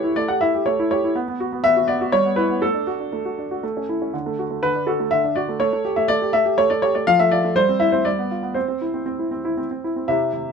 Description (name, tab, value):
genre	classical-period piano sonatina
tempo	121 BPM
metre	3/4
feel	rubato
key	C major from 7.1 s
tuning	A4 = 441 Hz
part	clear baby grand piano	solo	0.0-10.5 s	C3 to F#5	-18 LUFS	equal	none
room	light reverb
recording	minimal, uncompressed stereo recording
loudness	-18 LUFS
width	side -6 dB against mid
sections	0.0-10.1 A section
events	none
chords	0.0 A5; 1.1 B5; 2.1 Em/G; 2.6 D/A; 3.6 A; 4.1 D; 5.6 A7; 7.1 Dm/F; 7.6 C/G; 8.1 G7; 8.6 C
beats	0.16 0.66 | 1.14 1.63 2.12 | 2.62 3.12 3.63 | 4.13 4.63 5.12 | 5.60 6.09 6.58 | 7.06 7.55 8.05 | 8.56 9.07 9.58 | 10.09